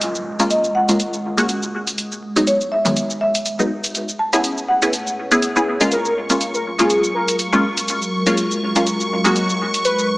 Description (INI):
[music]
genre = deep house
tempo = 122 BPM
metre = 4/4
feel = swing 56% on 16ths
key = F# major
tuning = A4 = 440 Hz
[part]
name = deep dark ambient pad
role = sustained chords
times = 0.0-10.2 s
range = E3 to D#6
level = -26 LUFS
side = equal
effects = chorus, built-in reverb
[part]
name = electronic hi-hat and shaker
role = drums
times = 0.0-10.1 s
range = none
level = -23 LUFS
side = equal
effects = none
[part]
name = downlifter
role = sound effects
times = 0.0-2.0 s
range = none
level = -37 LUFS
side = equal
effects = none
[part]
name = filtered dub chord stab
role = stabs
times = 0.4-9.8 s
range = D#3 to G#4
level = -19 LUFS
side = equal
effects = phaser, wide subtle chorus, analog delay
[part]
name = marimba with medium mallets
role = melody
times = 0.5-5.4 s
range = C#5 to A5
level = -21 LUFS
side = equal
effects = analog delay
[part]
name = warm velvety synth lead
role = melody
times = 5.9-10.1 s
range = G#4 to B4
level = -21 LUFS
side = equal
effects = chorus, analog delay
[part]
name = string machine, violins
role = texture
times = 5.9-10.2 s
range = C#6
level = -25 LUFS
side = equal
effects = ensemble chorus
[sound]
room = wet plate reverb, RT60 2.2 s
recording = echo-heavy mix, vinyl crackle, small speaker sound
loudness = -16 LUFS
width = side -20 dB against mid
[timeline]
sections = 0.0-10.2 A section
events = filter sweep on ambient pad 0.0-10.2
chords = 0.0 F#maj9; 2.0 Emaj9; 3.9 Amaj9; 5.9 F#maj9